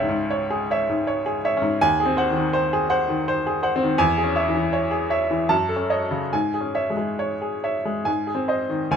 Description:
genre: classical, romantic character piece for solo piano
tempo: 66-84 BPM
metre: 3/4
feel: rubato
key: C# minor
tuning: A4 = 442 Hz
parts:
  - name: bright baby grand piano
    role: solo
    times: 0.0-9.0 s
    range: C#2 to A5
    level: -20 LUFS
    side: equal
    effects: none
room: light reverb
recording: minimal, uncompressed stereo recording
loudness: -20 LUFS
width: side -7 dB against mid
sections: 0.0-9.0 A section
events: none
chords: 0.0 C#m; 1.8 G#7/D#; 4.0 C#m/E; 5.5 D#m7b5/F#; 6.3 C#m/G#; 8.1 G#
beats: 0.31 1.08 | 1.82 2.55 3.27 | 3.98 4.71 5.49 | 6.32 7.22 8.07 | 8.91

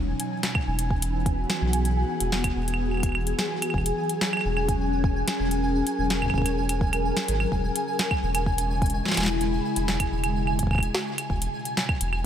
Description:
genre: IDM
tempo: 127 BPM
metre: 4/4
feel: straight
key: E lydian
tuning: A4 = 440 Hz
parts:
  - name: glassy FM pad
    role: sustained chords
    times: 0.0-12.3 s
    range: B2 to A#4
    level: -29 LUFS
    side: left 1 dB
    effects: ensemble chorus, built-in reverb, phaser
  - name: round analog bass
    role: bass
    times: 0.0-12.3 s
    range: E1 to B1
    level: -27 LUFS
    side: equal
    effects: none
  - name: pulsing gated texture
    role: texture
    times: 0.0-12.3 s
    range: G#5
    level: -32 LUFS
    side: right 2 dB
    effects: chorus, built-in reverb
  - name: electro analog drum machine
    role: drums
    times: 0.2-12.2 s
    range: claves, hi-hat, snare drum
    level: -29 LUFS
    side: equal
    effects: digital delay
  - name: electronic kick drum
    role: drums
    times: 0.6-12.0 s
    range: none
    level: -27 LUFS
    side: equal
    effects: none
room: light reverb, digital ambience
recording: none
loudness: -23 LUFS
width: side -9 dB against mid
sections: 0.0-12.3 A section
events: none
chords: 0.0 Eadd9; 3.7 F#7/E; 7.5 C#m/E; 11.3 B6/E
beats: 0.43 0.91 1.38 | 1.85 2.32 2.80 3.27 | 3.74 4.21 4.68 5.16 | 5.63 6.10 6.58 7.05 | 7.52 7.99 8.46 8.94 | 9.41 9.88 10.36 10.83 | 11.30 11.77 12.24

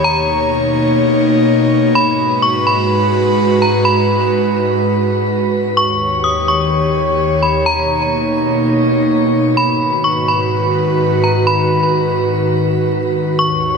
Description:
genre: hip hop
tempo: 126 BPM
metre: 4/4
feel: half-time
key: G# minor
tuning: A4 = 440 Hz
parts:
  - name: metallic FM bell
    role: melody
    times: 0.0-13.8 s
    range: A#5 to D#6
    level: -17 LUFS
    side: equal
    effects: chorus, low-pass filter, digital delay
  - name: airy breathy pad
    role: sustained chords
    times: 0.0-13.8 s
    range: D#2 to C#5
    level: -14 LUFS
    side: equal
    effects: chorus
room: moderate shimmer reverb, RT60 7.6 s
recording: nothing above 10.5 kHz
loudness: -12 LUFS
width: side -5 dB against mid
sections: 0.0-5.8 A section; 5.8-13.8 B section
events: none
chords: 0.0 Bmaj9; 2.0 G#m7; 5.8 D#7; 7.7 Bmaj9; 9.6 G#m7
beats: | 0.05 0.52 1.00 1.48 | 1.95 2.43 2.90 3.38 | 3.86 4.33 4.81 5.29 | 5.76 6.24 6.71 7.19 | 7.67 8.14 8.62 9.09 | 9.57 10.05 10.52 11.00 | 11.47 11.95 12.43 12.90 | 13.38

